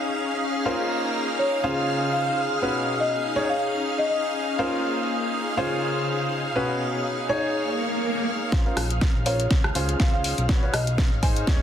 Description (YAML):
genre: piano house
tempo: 122 BPM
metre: 4/4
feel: swing 56% on 16ths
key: Bb minor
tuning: A4 = 440 Hz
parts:
  - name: string machine, violins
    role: sustained chords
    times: 0.0-11.6 s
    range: F5 to F6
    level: -30 LUFS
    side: equal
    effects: ensemble chorus, sidechain pumping
  - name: clear grand piano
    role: riff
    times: 0.0-11.6 s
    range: Db4 to F5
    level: -28 LUFS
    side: equal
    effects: sidechain pumping, low-pass filter, dub echo
  - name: rich symphonic string section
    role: texture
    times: 0.0-11.6 s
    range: B2 to C#5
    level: -29 LUFS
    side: left 1 dB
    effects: sidechain pumping
  - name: buzzing marimba with soft mallets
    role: melody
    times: 1.4-4.2, 9.3-11.4 s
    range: Db5 to Ab5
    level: -28 LUFS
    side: left 1 dB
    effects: dub echo
  - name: swell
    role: sound effects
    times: 7.7-8.5 s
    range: none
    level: -27 LUFS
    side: right 1 dB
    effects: none
  - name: electronic kick drum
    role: drums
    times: 8.5-11.6 s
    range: none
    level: -22 LUFS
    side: equal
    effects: none
  - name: house drum kit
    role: drums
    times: 8.5-11.6 s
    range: hi-hat, rim click, snare drum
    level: -28 LUFS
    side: equal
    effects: soft clipping on snare
  - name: fat analog bass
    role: bass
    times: 8.8-11.6 s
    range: Eb1 to Db2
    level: -28 LUFS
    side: equal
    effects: sidechain pumping
room: moderate plate reverb, RT60 2.0 s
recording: dense, heavily limited modern master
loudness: -22 LUFS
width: side -9 dB against mid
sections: 0.0-8.5 A section; 8.5-11.6 B section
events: swell 7.7-8.5; build-up 8.5-11.6; drum fill 8.5-11.6; filter sweep on grand piano 8.5-11.6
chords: 0.0 Absus4; 0.7 Bbmadd9; 1.6 Dbmaj7; 2.6 Bsus2; 3.4 Absus4; 4.6 Bbmadd9; 5.6 Dbmaj7; 6.6 Bsus2; 7.3 Absus4; 8.5 Bbmadd9; 9.5 Dbmaj7; 10.5 Bsus2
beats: 0.16 | 0.66 1.15 1.64 2.13 | 2.62 3.11 3.60 4.10 | 4.59 5.08 5.57 6.06 | 6.56 7.05 7.54 8.03 | 8.52 9.02 9.51 10.00 | 10.49 10.98 11.47